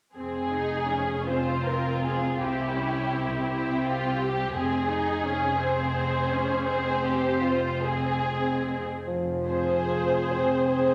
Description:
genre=classical, slow romantic movement for symphony orchestra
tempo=46-59 BPM (dotted quarters)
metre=6/8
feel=rubato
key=F minor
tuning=A4 = 439 Hz
part: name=warm symphonic violin section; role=melody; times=0.2-10.9 s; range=G4 to C5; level=-32 LUFS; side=equal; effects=none
part: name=warm studio violin section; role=second line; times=0.2-10.9 s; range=E4 to Ab4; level=-33 LUFS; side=equal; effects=none
part: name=rich studio viola section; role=accompaniment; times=0.2-10.9 s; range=C4 to Ab4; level=-34 LUFS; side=equal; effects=none
part: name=rich studio cello section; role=bass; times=0.2-10.9 s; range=C2 to F2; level=-39 LUFS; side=equal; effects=none
part: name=warm studio double bass section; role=bass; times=0.2-10.9 s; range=F1 to C2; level=-36 LUFS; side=equal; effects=none
part: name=mellow bassoon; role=accompaniment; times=9.1-10.9 s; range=F3 to C4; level=-29 LUFS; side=equal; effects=none
part: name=mellow French horn section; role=sustained chords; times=9.1-10.9 s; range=F3 to C4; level=-33 LUFS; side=equal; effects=none
room=wet scoring stage reverb, RT60 1.7 s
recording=none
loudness=-27 LUFS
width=mono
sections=0.2-9.1 A section; 9.1-10.9 B section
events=none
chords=0.2 Fm; 2.4 C; 4.6 Fm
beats=| 0.16 1.28 | 2.40 3.50 | 4.57 5.61 | 6.67 7.83 | 9.09 10.33

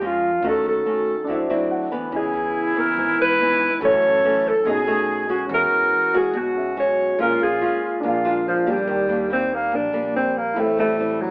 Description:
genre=bossa nova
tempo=142 BPM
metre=4/4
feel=straight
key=unclear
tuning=A4 = 440 Hz
part: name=mellow alto saxophone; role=melody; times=0.0-11.3 s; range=F3 to C#5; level=-19 LUFS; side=equal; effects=none
part: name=nylon-string guitar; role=accompaniment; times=0.0-11.3 s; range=Gb2 to G#4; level=-25 LUFS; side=equal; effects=none
part: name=warm grand piano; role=accompaniment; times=0.0-11.3 s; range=Cb4 to Cb6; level=-29 LUFS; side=equal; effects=none
part: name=upright bass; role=bass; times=0.0-11.3 s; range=Ab1 to Gb2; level=-40 LUFS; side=equal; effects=none
part: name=breathy concert flute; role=second line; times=2.1-8.6 s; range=Fb4 to A4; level=-25 LUFS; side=equal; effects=none
room=wet studio reverb, RT60 0.6 s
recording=heard from further back in the room, AM radio sound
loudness=-18 LUFS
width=side -26 dB against mid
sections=0.0-8.9 A section; 8.9-11.3 B section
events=grand piano fill 1.3-2.1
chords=0.4 Ebm7b5; 1.3 D9; 2.1 Dbm9; 3.8 Gbm7; 4.7 B13; 5.5 E69; 7.2 Bbm7; 8.0 Bb7; 8.9 Ebmaj7; 10.6 Am7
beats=0.01 | 0.43 0.85 1.27 1.70 | 2.12 2.54 2.96 3.39 | 3.81 4.23 4.66 5.08 | 5.50 5.92 6.34 6.76 | 7.19 7.61 8.03 8.45 | 8.87 9.30 9.72 10.14 | 10.56 10.98

